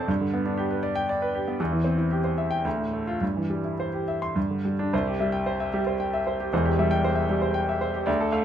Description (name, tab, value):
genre	classical, virtuoso piano study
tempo	104-119 BPM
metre	3/4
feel	rubato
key	C major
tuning	A4 = 439 Hz
part	clear grand piano	solo	0.0-8.4 s	E1 to C6	-23 LUFS	equal	none
room	light reverb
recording	minimal, uncompressed stereo recording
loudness	-23 LUFS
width	side -9 dB against mid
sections	0.0-4.9 A section; 4.9-8.4 B section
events	none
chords	0.1 G; 1.6 C/E; 2.6 Dm; 3.2 C/G; 4.4 G5; 4.9 C; 6.5 C/E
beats	| 0.08 0.58 1.09 | 1.60 2.11 2.65 | 3.21 3.79 4.36 | 4.92 5.46 5.99 | 6.52 7.03 7.55 | 8.07